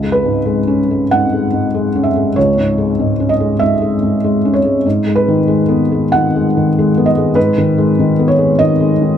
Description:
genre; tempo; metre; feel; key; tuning
neoclassical minimalist piano; 96 BPM; 4/4; rubato; C# minor; A4 = 441 Hz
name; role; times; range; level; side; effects
felt-muted upright piano; solo; 0.0-9.2 s; C#2 to F#5; -11 LUFS; equal; none
room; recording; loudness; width
light reverb; none; -11 LUFS; side -9 dB against mid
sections
0.0-9.2 A section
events
none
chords
0.0 C#m7; 4.8 G#m7

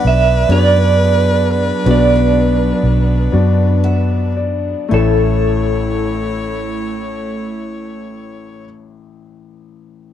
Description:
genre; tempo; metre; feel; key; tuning
acoustic folk-pop ballad; 36-45 BPM (dotted quarters); 6/8; straight; A major; A4 = 439 Hz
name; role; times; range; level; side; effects
electric guitar through a small old amp; melody; 0.0-8.7 s; A4 to E5; -17 LUFS; right 4 dB; tremolo
bright viola; second line; 0.0-8.6 s; B4 to C#5; -25 LUFS; left 6 dB; none
warm baby grand piano; accompaniment; 0.0-10.1 s; A1 to F#5; -21 LUFS; left 7 dB; none
warm chamber string section; sustained chords; 0.0-8.7 s; A2 to C#5; -24 LUFS; right 3 dB; stereo widening
picked steel-string acoustic guitar; arpeggios; 0.0-8.6 s; D4 to E5; -25 LUFS; right 6 dB; none
vintage muted fingered electric bass; bass; 0.0-8.6 s; A1 to F#2; -15 LUFS; right 1 dB; none
room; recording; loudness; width
little or no reverb; dry, close 1970s-style studio recording; -12 LUFS; side -10 dB against mid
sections
0.0-4.9 A section; 4.9-8.2 B section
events
slowing down 0.0-4.9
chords
0.0 Bm; 4.9 A

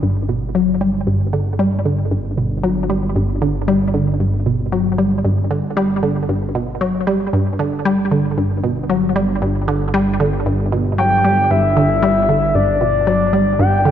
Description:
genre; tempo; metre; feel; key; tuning
ambient, sequencer-driven space music; 115 BPM; 4/4; straight; G major; A4 = 441 Hz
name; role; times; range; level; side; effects
resonant blip pluck; riff; 0.0-13.9 s; G2 to G3; -16 LUFS; equal; chorus, tape echo
fat analog bass; bass; 0.0-13.9 s; G1; -22 LUFS; right 1 dB; none
soft octave-layered synth lead; melody; 11.0-13.9 s; D5 to G5; -15 LUFS; left 2 dB; chorus, cassette tape, tape echo
room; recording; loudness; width
wet concert hall reverb, RT60 2.4 s; nothing above 7.8 kHz; -15 LUFS; side -10 dB against mid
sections
0.0-13.9 A section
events
none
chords
0.0 G

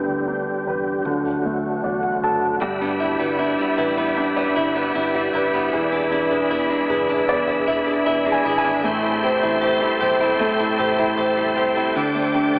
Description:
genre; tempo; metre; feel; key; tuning
pop ballad; 77 BPM; 4/4; straight; G major; A4 = 435 Hz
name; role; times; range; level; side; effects
warm concert grand piano; accompaniment; 0.0-12.6 s; D3 to A5; -23 LUFS; equal; none
tonewheel organ; sustained chords; 0.0-12.6 s; D3 to D6; -26 LUFS; equal; chorus vibrato, stopped rotary speaker
vintage muted fingered electric bass; bass; 0.0-12.6 s; E1 to E2; -42 LUFS; equal; none
direct-recorded clean electric guitar; arpeggios; 2.6-12.6 s; E2 to G4; -28 LUFS; equal; lush chorus, diffuse ambient delay
room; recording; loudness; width
wet huge ambient reverb, RT60 7.1 s; dreamy mix soaked in reverb, AM radio sound; -21 LUFS; mono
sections
0.0-2.6 A section; 2.6-12.6 B section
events
grand piano fill 1.4-2.6, 6.5-8.9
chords
0.0 G/D; 1.1 D; 2.6 G6; 5.7 E7; 8.9 Am7; 12.0 Dsus4

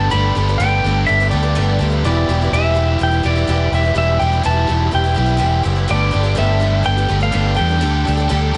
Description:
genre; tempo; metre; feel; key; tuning
rock; 125 BPM; 4/4; straight; G major; A4 = 439 Hz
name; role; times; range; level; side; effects
clean lap steel guitar; melody; 0.0-8.6 s; D5 to B5; -22 LUFS; equal; slapback echo
picked twelve-string acoustic guitar; accompaniment; 0.0-8.6 s; G2 to A4; -26 LUFS; equal; none
bright tonewheel organ; sustained chords; 0.0-8.6 s; G4 to D6; -32 LUFS; equal; slow rotary speaker, chorus vibrato
overdriven electric guitar; riff; 0.0-8.6 s; E2 to A4; -24 LUFS; equal; none
fingered electric bass; bass; 0.0-8.5 s; E1 to E2; -19 LUFS; equal; none
room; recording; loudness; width
little or no reverb; nothing above 10.5 kHz; -16 LUFS; mono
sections
0.0-8.6 A section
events
none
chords
0.0 Gadd9; 2.0 Em; 5.9 Gadd9; 7.8 Dsus4

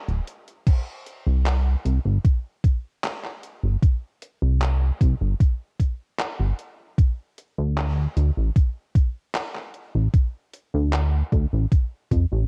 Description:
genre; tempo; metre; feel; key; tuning
vaporwave; 76 BPM; 4/4; straight; unclear; A4 = 440 Hz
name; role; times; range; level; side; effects
chorused synth bass; bass; 0.1-12.4 s; D1 to F2; -22 LUFS; equal; none
detuned 8-bit digital drum machine; drums; 0.1-12.3 s; crash cymbal, handclaps, hi-hat; -34 LUFS; equal; overdrive
electronic kick drum; drums; 0.7-12.3 s; none; -21 LUFS; equal; overdrive
room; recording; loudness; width
little or no reverb; cassette tape; -23 LUFS; mono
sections
0.7-12.5 A section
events
none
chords
none

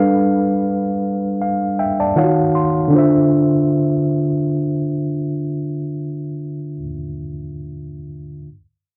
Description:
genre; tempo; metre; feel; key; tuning
R&B; 79 BPM; 4/4; swing 54% on 16ths; D dorian; A4 = 441 Hz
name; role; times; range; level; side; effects
tine electric piano; accompaniment; 0.0-8.5 s; D3 to C6; -19 LUFS; equal; low-pass filter, cassette tape
room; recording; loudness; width
wet booth ambience, RT60 0.2 s; home recording on cassette, nothing above 7.8 kHz; -18 LUFS; mono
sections
0.0-2.9 A section; 2.9-6.0 B section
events
filter sweep on tine electric piano 0.0-2.9; tine electric piano fill 1.4-2.9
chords
0.0 G9; 2.2 Ebm7; 2.9 Dm7

